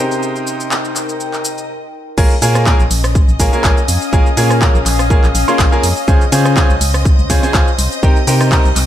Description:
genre	piano house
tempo	123 BPM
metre	4/4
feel	swing 54% on 16ths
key	Bb dorian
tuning	A4 = 440 Hz
part	string machine, violins	sustained chords	0.0-8.9 s	Eb5 to Eb6	-27 LUFS	equal	ensemble chorus, sidechain pumping
part	bright baby grand piano	riff	0.0-8.7 s	C3 to C6	-18 LUFS	equal	sidechain pumping, digital delay
part	warbly tape-like pad	texture	0.0-8.9 s	C4 to C6	-23 LUFS	left 4 dB	chorus, built-in reverb, sidechain pumping
part	house drum kit	drums	0.1-8.9 s	crash cymbal, handclaps, hi-hat, rim click, shaker	-19 LUFS	equal	overdrive
part	organ-like FM bass	bass	2.2-8.9 s	Bb1 to Db3	-16 LUFS	equal	sidechain pumping
part	electronic kick drum	drums	2.2-8.6 s	none	-12 LUFS	equal	overdrive
room	digital ambience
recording	none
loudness	-11 LUFS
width	side -11 dB against mid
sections	0.0-2.2 A section; 2.2-8.9 B section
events	stop 1.7-2.2; drop 2.2-8.9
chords	0.0 Cm7; 2.2 Bbm7; 6.1 Dbmaj7; 7.8 Cm7

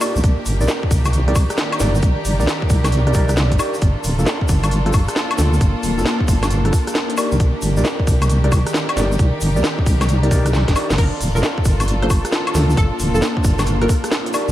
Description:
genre	UK garage, two-step garage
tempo	134 BPM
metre	4/4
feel	swing 65% on 16ths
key	G minor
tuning	A4 = 439 Hz
part	warm studio violin section	sustained chords	0.0-14.5 s	Bb3 to A4	-28 LUFS	equal	sidechain pumping
part	overdriven tine electric piano	stabs	0.0-14.5 s	Bb3 to D5	-26 LUFS	equal	diffuse ambient delay
part	garage drum kit	drums	0.0-14.5 s	crash cymbal, hi-hat, rim click, snare drum, woodblock	-23 LUFS	equal	none
part	tube shaker	percussion	0.0-14.5 s	none	-33 LUFS	left 2 dB	none
part	ethereal airy pad	texture	0.0-14.5 s	Eb3 to Bb5	-28 LUFS	left 1 dB	ensemble chorus, built-in reverb, sidechain pumping
part	deep soft wobble bass	bass	0.2-14.5 s	D1 to D2	-17 LUFS	equal	chorus
part	electronic kick drum	drums	0.2-14.0 s	none	-17 LUFS	equal	none
part	string-like resonator pluck	melody	11.0-14.0 s	A4 to C5	-28 LUFS	right 1 dB	ensemble chorus, analog delay
room	light reverb, digital ambience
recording	vinyl crackle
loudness	-15 LUFS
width	side -14 dB against mid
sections	0.0-14.5 A section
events	drum fill 10.5-11.0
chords	0.0 Cm9; 3.8 Gm9; 7.2 Cm9; 11.0 Gm9

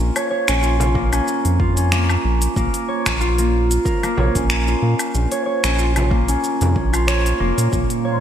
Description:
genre	organic downtempo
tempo	93 BPM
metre	4/4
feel	swing 54% on 16ths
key	Bb minor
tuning	A4 = 440 Hz
part	concert harp	arpeggios	0.0-8.2 s	Bb3 to Db5	-20 LUFS	equal	ping-pong delay
part	round analog bass	bass	0.0-7.9 s	F1 to Bb2	-18 LUFS	equal	sidechain pumping
part	organic electronic drum kit	drums	0.2-8.0 s	finger snaps, hi-hat, shaker, woodblock	-24 LUFS	equal	studio reverb, gated reverb
part	frame drum	percussion	0.8-6.7 s	none	-28 LUFS	right 1 dB	none
part	electronic kick drum	drums	1.0-7.9 s	none	-23 LUFS	equal	studio reverb
part	airy breathy pad	sustained chords	7.7-8.2 s	Bb2 to C6	-22 LUFS	right 4 dB	chorus, sidechain pumping
room	moderate lush hall reverb, RT60 2.4 s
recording	bright 1980s-style digital production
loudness	-16 LUFS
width	side -9 dB against mid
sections	0.0-8.2 A section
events	none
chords	0.0 Bbm

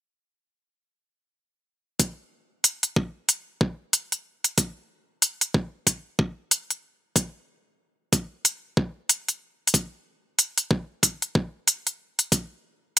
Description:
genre	glitch hop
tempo	93 BPM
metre	4/4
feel	swing 59% on 16ths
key	none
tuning	none
part	electronic hi-hat	drums	2.0-13.0 s	none	-18 LUFS	equal	none
part	electronic kick drum	drums	2.0-12.5 s	none	-23 LUFS	equal	high-pass filter on kick
room	little or no reverb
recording	none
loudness	-23 LUFS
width	side -11 dB against mid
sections	2.0-13.0 A section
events	none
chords	none

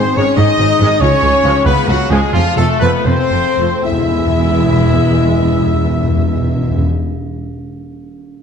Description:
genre	cinematic, heroic adventure film score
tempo	75-95 BPM (dotted quarters)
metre	6/8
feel	straight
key	E major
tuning	A4 = 440 Hz
part	warm symphonic violin section	melody	0.0-6.8 s	F4 to E5	-23 LUFS	left 4 dB	none
part	clear oboe	second line	0.0-6.8 s	F4 to E5	-24 LUFS	right 1 dB	none
part	mellow hollow silver concert flute	second line	0.0-6.8 s	E5 to D#6	-26 LUFS	left 2 dB	none
part	rich symphonic violin section	second line	0.0-6.8 s	F4 to E5	-26 LUFS	left 5 dB	none
part	warm symphonic viola section	accompaniment	0.0-6.8 s	B3 to A4	-27 LUFS	left 1 dB	none
part	dark French horn section	sustained chords	0.0-6.8 s	F3 to E4	-18 LUFS	left 4 dB	none
part	concert harp	arpeggios	0.0-7.7 s	G#2 to C#6	-24 LUFS	left 7 dB	none
part	warm trumpet section	stabs	0.0-6.8 s	F4 to E5	-21 LUFS	right 2 dB	none
part	rich symphonic cello section	bass	0.0-6.8 s	C#2 to G#2	-19 LUFS	right 3 dB	none
part	rich symphonic double bass section	bass	0.0-6.8 s	E1 to C#2	-19 LUFS	right 3 dB	none
part	clear trombone section	sustained chords	0.2-6.8 s	D#3 to A3	-26 LUFS	right 2 dB	none
part	timpani	percussion	3.8-6.9 s	E2	-18 LUFS	equal	none
room	wet scoring stage reverb, RT60 1.4 s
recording	dark, warm production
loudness	-11 LUFS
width	side -7 dB against mid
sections	0.0-3.8 A section; 3.8-7.0 B section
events	slowing down 0.4-3.8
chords	0.0 G#; 1.0 C#; 2.3 F; 3.8 E

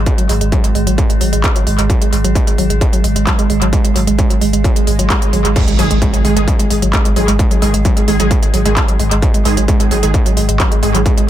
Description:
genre	driving peak-time techno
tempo	131 BPM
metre	4/4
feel	straight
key	unclear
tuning	A4 = 439 Hz
part	woody wave-folded pluck	riff	0.0-11.2 s	F#3 to G#3	-19 LUFS	right 1 dB	chorus, tube saturation, sidechain pumping, dub echo
part	saturated sub bass	bass	0.0-11.1 s	G#1	-16 LUFS	equal	sidechain pumping, low-pass filter
part	metallic inharmonic drone	drone	0.0-11.3 s	G#2 to G#3	-22 LUFS	right 3 dB	chorus, built-in reverb, sidechain pumping
part	electronic kick drum	drums	0.1-11.2 s	none	-14 LUFS	equal	distortion
part	techno drum kit	drums	0.1-11.3 s	crash cymbal, handclaps, hi-hat	-21 LUFS	equal	tape echo
part	swell and impact	sound effects	4.8-7.4 s	none	-23 LUFS	left 2 dB	none
part	rave stab	stabs	5.8-11.0 s	D#3 to G#4	-19 LUFS	right 3 dB	chorus, built-in reverb, sidechain pumping, tape echo
room	little or no reverb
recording	echo-heavy mix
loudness	-11 LUFS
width	side -12 dB against mid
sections	0.0-5.6 A section; 5.6-11.3 B section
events	swell 4.8-5.6; drop 5.6-11.3; impact 5.6-7.4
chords	0.0 Eadd9/G# (rootless); 5.6 G#5

